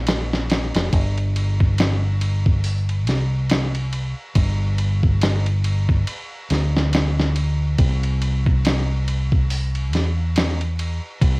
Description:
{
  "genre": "trip hop",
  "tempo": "70 BPM",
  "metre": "4/4",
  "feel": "swing 58% on 16ths",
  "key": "unclear",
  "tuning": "A4 = 440 Hz",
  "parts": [
    { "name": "deep dub fingered electric bass", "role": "bass", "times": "0.0-11.4 s", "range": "F1 to E2", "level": "-20 LUFS", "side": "equal", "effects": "none" },
    { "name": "dusty soul sampler-style drum kit", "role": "drums", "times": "0.1-11.4 s", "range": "hi-hat, kick drum, ride cymbal, snare drum", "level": "-21 LUFS", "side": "equal", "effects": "cassette tape" }
  ],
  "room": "little or no reverb",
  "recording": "home recording on cassette, vinyl crackle",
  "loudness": "-18 LUFS",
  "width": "side -27 dB against mid",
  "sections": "0.9-11.4 A section",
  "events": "none",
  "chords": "none"
}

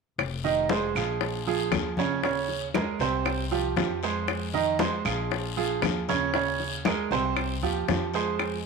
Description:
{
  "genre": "latin, Cuban son and guajira",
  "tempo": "117 BPM",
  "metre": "4/4",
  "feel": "straight",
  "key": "F minor",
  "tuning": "A4 = 440 Hz",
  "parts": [
    { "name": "upright bass", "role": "bass", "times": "0.2-8.7 s", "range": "F1 to F2", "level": "-34 LUFS", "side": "left 3 dB", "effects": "none" },
    { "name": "bongos", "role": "percussion", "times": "0.2-8.7 s", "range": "none", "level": "-32 LUFS", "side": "left 15 dB", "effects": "none" },
    { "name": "claves", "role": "percussion", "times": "0.2-8.7 s", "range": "none", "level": "-35 LUFS", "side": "right 12 dB", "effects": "none" },
    { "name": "congas", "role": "percussion", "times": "0.2-8.7 s", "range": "none", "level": "-32 LUFS", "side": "left 4 dB", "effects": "none" },
    { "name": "guiro", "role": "percussion", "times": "0.2-8.7 s", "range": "none", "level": "-37 LUFS", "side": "left 18 dB", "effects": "none" },
    { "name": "clear grand piano", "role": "arpeggios", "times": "0.4-8.6 s", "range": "C3 to Eb5", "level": "-27 LUFS", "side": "right 8 dB", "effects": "none" }
  ],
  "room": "wet spring reverb, RT60 1.6 s, studio reverb",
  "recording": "1960s-style stereo with parts hard left and right",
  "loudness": "-24 LUFS",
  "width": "side -4 dB against mid",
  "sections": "0.2-8.7 A section",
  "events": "none",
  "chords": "0.2 Fm7; 1.2 Bbm7; 2.2 Eb7sus4; 3.3 Csus4; 4.3 Fm7; 5.3 Bbm7; 6.3 Eb7sus4; 7.4 Csus4"
}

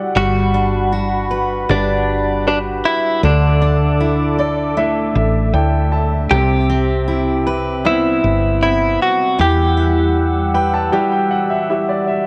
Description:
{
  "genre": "pop ballad",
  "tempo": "78 BPM",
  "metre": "4/4",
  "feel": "straight",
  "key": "G major",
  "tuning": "A4 = 440 Hz",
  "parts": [
    { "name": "clear grand piano", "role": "accompaniment", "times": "0.0-12.3 s", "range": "C3 to A5", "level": "-23 LUFS", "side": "equal", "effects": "none" },
    { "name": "warm analog pad", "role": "sustained chords", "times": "0.0-12.3 s", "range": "G3 to E6", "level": "-27 LUFS", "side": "equal", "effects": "chorus" },
    { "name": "direct-recorded clean electric guitar", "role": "melody", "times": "0.2-10.9 s", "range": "D4 to G4", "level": "-20 LUFS", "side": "equal", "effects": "none" },
    { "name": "fingerpicked steel-string acoustic guitar", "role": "arpeggios", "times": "0.2-12.3 s", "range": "C3 to B4", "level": "-25 LUFS", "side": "equal", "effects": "none" },
    { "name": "woody fretless electric bass", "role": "bass", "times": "0.2-10.9 s", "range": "G1 to E2", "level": "-21 LUFS", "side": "equal", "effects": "none" }
  ],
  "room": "light reverb",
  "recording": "none",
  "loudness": "-16 LUFS",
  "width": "mono",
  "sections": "0.0-12.3 A section",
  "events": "grand piano fill 0.0, 4.0-6.3, 10.2-12.3",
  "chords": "0.2 Gmaj7; 3.2 Dsus2; 6.3 Cmaj7; 9.4 Emadd9"
}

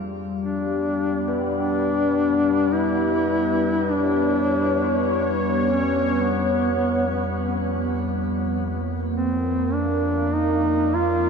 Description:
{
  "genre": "dark ambient drone",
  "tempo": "51 BPM",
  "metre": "4/4",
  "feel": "straight",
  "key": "unclear",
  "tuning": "A4 = 436 Hz",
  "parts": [
    { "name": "sweeping resonant pad", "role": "sustained chords", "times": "0.0-11.3 s", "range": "G3 to D5", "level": "-24 LUFS", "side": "equal", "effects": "chorus, shimmer reverb" },
    { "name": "old church bells", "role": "arpeggios", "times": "0.0-8.3 s", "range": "F3 to B3", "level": "-36 LUFS", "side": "left 4 dB", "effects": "none" },
    { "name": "deep rumbling drone", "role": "drone", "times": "0.0-11.3 s", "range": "F2", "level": "-30 LUFS", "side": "equal", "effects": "built-in reverb" },
    { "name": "mellow duduk", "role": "melody", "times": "0.4-11.3 s", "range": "B3 to F4", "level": "-23 LUFS", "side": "left 1 dB", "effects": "shimmer reverb, ping-pong delay" }
  ],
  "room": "wet huge ambient reverb, RT60 8.8 s",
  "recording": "none",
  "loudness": "-20 LUFS",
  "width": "side -5 dB against mid",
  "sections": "0.0-11.3 A section",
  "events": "fade-in on synth drone 0.0-11.3",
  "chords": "0.0 G; 8.6 Bb"
}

